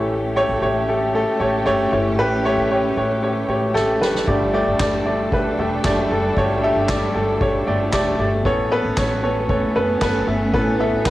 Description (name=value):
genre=piano-driven pop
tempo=115 BPM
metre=4/4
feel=straight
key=unclear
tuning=A4 = 439 Hz
part: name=bright upright piano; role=accompaniment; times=0.0-11.1 s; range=G2 to A5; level=-19 LUFS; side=equal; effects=cassette tape
part: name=rich studio string section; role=sustained chords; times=0.0-11.1 s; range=G3 to A4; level=-25 LUFS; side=right 1 dB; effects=cassette tape
part: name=upright bass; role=bass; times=0.0-11.1 s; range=E1 to A1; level=-27 LUFS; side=equal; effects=none
part: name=soft-mallet drum kit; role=drums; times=3.8-11.1 s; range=handclaps, kick drum, snare drum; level=-26 LUFS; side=equal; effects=cassette tape
room=moderate studio reverb, RT60 0.6 s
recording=home recording on cassette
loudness=-17 LUFS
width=side -16 dB against mid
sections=0.0-11.1 A section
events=drum fill 3.8-4.3; upright piano fill 7.4-8.5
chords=0.0 A7; 4.3 Gsus2; 8.5 Aadd9